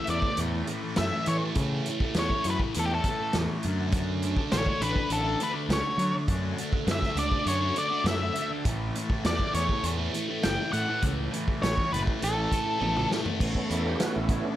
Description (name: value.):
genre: psychedelic rock.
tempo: 101 BPM.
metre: 4/4.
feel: straight.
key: A major.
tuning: A4 = 440 Hz.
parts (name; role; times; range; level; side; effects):
octave-fuzz lead guitar; melody; 0.0-13.1 s; G4 to G5; -30 LUFS; left 1 dB; distortion, slapback echo.
thick fuzz guitar; riff; 0.0-14.6 s; A2 to B4; -31 LUFS; equal; distortion, phaser.
fuzz fingered electric bass; bass; 0.1-14.4 s; F#1 to F#3; -31 LUFS; equal; overdrive.
vintage drum kit; drums; 0.1-14.4 s; crash cymbal, hi-hat, kick drum, snare drum, toms; -30 LUFS; equal; none.
overdriven tonewheel organ; sustained chords; 13.4-14.6 s; A3 to A4; -31 LUFS; right 3 dB; slow rotary speaker, chorus vibrato.
room: small room reverb.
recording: none.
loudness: -25 LUFS.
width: side -13 dB against mid.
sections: 0.0-13.4 A section; 13.4-14.6 B section.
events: drum fill 12.8-13.4; tonewheel organ solo 13.4-14.6.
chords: 0.0 A5/E; 3.6 D; 8.7 A5; 13.4 Aadd9.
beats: 0.39 0.98 | 1.57 2.16 2.75 3.34 | 3.93 4.53 5.12 5.71 | 6.30 6.89 7.48 8.08 | 8.67 9.26 9.85 10.45 | 11.04 11.63 12.22 12.81 | 13.41 14.00.